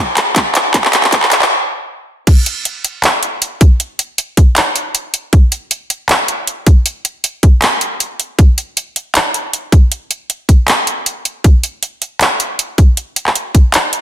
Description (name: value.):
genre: future bass.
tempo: 157 BPM.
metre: 4/4.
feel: swing 54% on 16ths, half-time.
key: none.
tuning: none.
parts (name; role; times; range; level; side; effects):
trap drum kit; drums; 0.2-14.0 s; crash cymbal, handclaps, hi-hat; -13 LUFS; equal; none.
electronic kick drum; drums; 0.4-13.6 s; none; -7 LUFS; equal; none.
room: moderate digital room reverb, RT60 1.1 s.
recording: dense, heavily limited modern master, high-pass filter.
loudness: -11 LUFS.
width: side -12 dB against mid.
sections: 0.0-2.3 A section; 2.3-14.0 B section.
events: build-up 0.0-2.3; drum fill 0.0-1.5; stop 1.5-2.3; drop 2.3-14.0.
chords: none.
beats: 0.36 | 0.74 1.12 1.51 1.89 | 2.27 2.65 3.04 3.42 | 3.80 4.18 4.56 4.95 | 5.33 5.71 6.09 6.47 | 6.86 7.24 7.62 8.00 | 8.39 8.77 9.15 9.53 | 9.91 10.30 10.68 11.06 | 11.44 11.83 12.21 12.59 | 12.97 13.35 13.74.